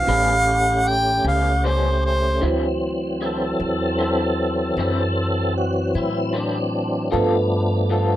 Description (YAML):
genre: slow blues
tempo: 51 BPM (dotted quarters)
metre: 12/8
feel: straight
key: D mixolydian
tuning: A4 = 442 Hz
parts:
  - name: warm harmonica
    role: melody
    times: 0.0-2.4 s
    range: C5 to G5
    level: -19 LUFS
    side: right 1 dB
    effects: overdrive
  - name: tine electric piano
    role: accompaniment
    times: 0.0-8.2 s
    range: C#4 to B5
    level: -27 LUFS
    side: right 4 dB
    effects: lush chorus
  - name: tonewheel organ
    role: sustained chords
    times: 0.0-8.2 s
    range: E3 to A4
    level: -23 LUFS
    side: left 1 dB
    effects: slow rotary speaker, overdrive, chorus vibrato
  - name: upright bass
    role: bass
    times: 0.0-8.2 s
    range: A1 to A2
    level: -24 LUFS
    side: equal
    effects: none
  - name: electric guitar through a small old amp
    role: accompaniment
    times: 0.1-8.1 s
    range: A2 to A4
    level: -27 LUFS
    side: left 4 dB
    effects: tremolo
room: light reverb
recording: rough home demo mix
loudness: -18 LUFS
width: side -13 dB against mid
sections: 0.0-2.4 A section; 2.4-8.2 B section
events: tonewheel organ solo 2.4-8.2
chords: 0.1 A9; 2.4 D9; 7.1 G9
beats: 0.09 1.26 | 2.43 3.60 4.78 5.95 | 7.12